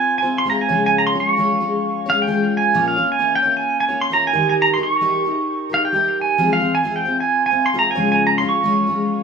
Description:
rock; 132 BPM; 4/4; straight; A4 = 440 Hz
pedal steel guitar; melody; 0.0-9.2 s; F5 to Db6; -17 LUFS; right 3 dB; digital delay
picked twelve-string acoustic guitar; accompaniment; 0.0-9.2 s; Bb2 to Db5; -21 LUFS; left 2 dB
light reverb; rough home demo mix, studio ambience; -15 LUFS; side -6 dB against mid
0.0-9.2 A section
0.0 Fm; 0.7 Db; 2.7 Bbm; 4.3 Eb; 6.4 Fm; 8.0 Db
0.00 0.46 | 0.91 1.37 1.82 2.28 | 2.73 3.19 3.65 4.10 | 4.56 5.02 5.47 5.93 | 6.38 6.84 7.30 7.75 | 8.21 8.66 9.12

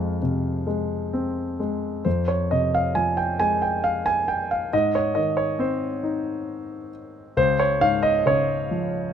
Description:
classical, lyrical solo piano; 68 BPM; 3/4; rubato; F minor; A4 = 441 Hz
warm concert grand piano; solo; 0.0-9.1 s; Db2 to Ab5; -21 LUFS; equal
little or no reverb; close, detailed microphones; -21 LUFS; side -8 dB against mid
0.0-2.1 A section; 2.1-9.1 B section
0.0 Fm; 4.7 Ab; 7.4 Db
0.22 1.13 | 2.06 2.96 3.85 | 4.73 5.60 6.49 | 7.38 8.27

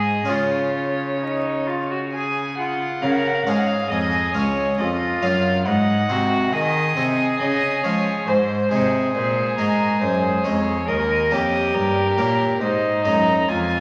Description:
classical, baroque-style sonata movement with continuo; 69 BPM; 3/4; straight; Db major; A4 = 440 Hz
dark violin; melody; 0.0-13.8 s; Bb4 to Bb5; -27 LUFS; equal
dark violin; second line; 0.0-13.8 s; Eb4 to C5; -26 LUFS; equal
harpsichord; accompaniment; 0.0-13.8 s; Db2 to Ab4; -27 LUFS; equal
rich cello; bass; 0.0-13.8 s; Db2 to F3; -27 LUFS; equal
wet recital hall reverb, RT60 1.4 s; vinyl crackle; -21 LUFS; mono
0.0-3.0 A section; 3.0-13.8 B section
0.3 Db; 5.7 Ab7; 7.4 Db; 8.3 Ab; 10.9 Eb7; 12.6 Ab
| 0.29 1.20 2.12 | 3.02 3.90 4.78 | 5.66 6.53 7.40 | 8.27 9.15 10.02 | 10.88 11.75 12.62 | 13.49

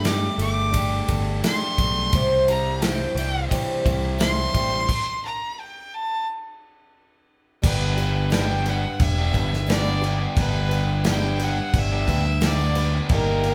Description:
folk rock and heartland rock; 88 BPM; 4/4; straight; G major; A4 = 443 Hz
bright fiddle; melody; 0.0-13.5 s; Bb4 to D6; -30 LUFS; equal
picked plugged-in twelve-string acoustic guitar; accompaniment; 0.0-13.5 s; C3 to C5; -31 LUFS; equal
crunchy overdriven guitar; riff; 0.0-13.5 s; G2 to G4; -31 LUFS; equal
picked electric bass; bass; 0.0-13.5 s; E1 to G2; -27 LUFS; equal
natural country drum kit; drums; 0.0-13.5 s; crash cymbal, kick drum, ride cymbal, snare drum; -27 LUFS; equal
tambourine; percussion; 0.0-13.5 s; -49 LUFS; equal
moderate large studio reverb, RT60 1.5 s; band playing live in one room; -22 LUFS; mono
0.0-7.6 A section; 7.6-13.5 B section
fiddle solo 0.0-7.6; stop 4.9-7.6
0.0 Gsus2; 2.1 C; 4.9 N.C.; 7.6 G
0.04 0.74 1.43 | 2.12 2.82 3.51 4.20 | 4.89 5.58 6.26 6.95 | 7.63 8.32 9.00 9.69 | 10.37 11.05 11.74 12.42 | 13.10

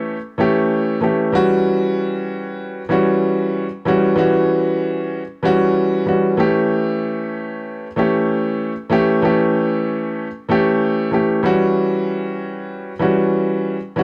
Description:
hip hop; 95 BPM; 4/4; swing 59% on 16ths; E dorian; A4 = 440 Hz
warm upright piano; solo; 0.0-14.0 s; E3 to G4; -18 LUFS; equal
light reverb; dark, warm production; -18 LUFS; mono
0.0-11.4 A section; 11.4-14.0 B section
0.0 A7; 1.3 Em69; 6.4 A7; 11.4 Em69
0.07 0.70 | 1.33 1.97 2.60 3.23 | 3.86 4.49 5.12 5.75 | 6.39 7.02 7.65 8.28 | 8.91 9.54 10.18 10.81 | 11.44 12.07 12.70 13.33 | 13.96

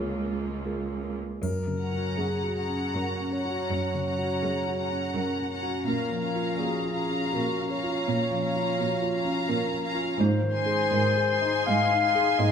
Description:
cinematic, emotional film score for orchestra; 76-86 BPM; 3/4; rubato; A4 = 440 Hz
dark concert grand piano; accompaniment; 0.0-12.5 s; Db2 to Eb5; -30 LUFS; equal
rich studio viola section; accompaniment; 0.0-12.5 s; Bb3 to F4; -37 LUFS; right 3 dB
clear studio cello section; bass; 0.0-12.5 s; Db2 to Bb2; -31 LUFS; right 3 dB
dark clarinet; second line; 1.4-12.5 s; Gb4 to F5; -29 LUFS; left 2 dB
triangle; percussion; 1.4-2.9 s; -50 LUFS; left 7 dB
clear studio violin section; melody; 1.8-12.5 s; Bb5 to C6; -34 LUFS; left 3 dB
rich studio violin section; second line; 1.8-12.5 s; F5 to Ab5; -34 LUFS; left 2 dB
wet recital hall reverb, RT60 1.7 s; -25 LUFS; side -7 dB against mid
0.0-1.4 A section; 1.4-12.5 B section
0.0 Db6; 1.4 Gb; 5.9 Bbm; 10.2 Ab
0.65 | 1.43 2.18 2.95 | 3.71 4.43 5.15 | 5.87 6.59 7.33 | 8.07 8.79 9.49 | 10.19 10.92 11.67 | 12.40

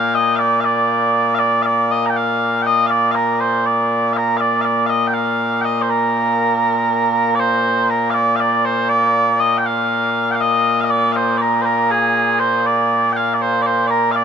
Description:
scottish traditional, Scottish pipe music; 80 BPM (dotted quarters); 6/8; straight; Bb major; A4 = 440 Hz
mellow small bagpipes; solo; 0.0-14.2 s; Bb2 to Bb5; -14 LUFS; equal
moderate huge ambient reverb, RT60 8.1 s; -14 LUFS; side -7 dB against mid
0.0-7.4 A section; 7.4-14.2 B section
0.65 | 1.40 2.15 | 2.90 3.65 | 4.40 5.15 | 5.90 6.65 | 7.40 8.15 | 8.90 9.65 | 10.40 11.15 | 11.90 12.65 | 13.40 14.15

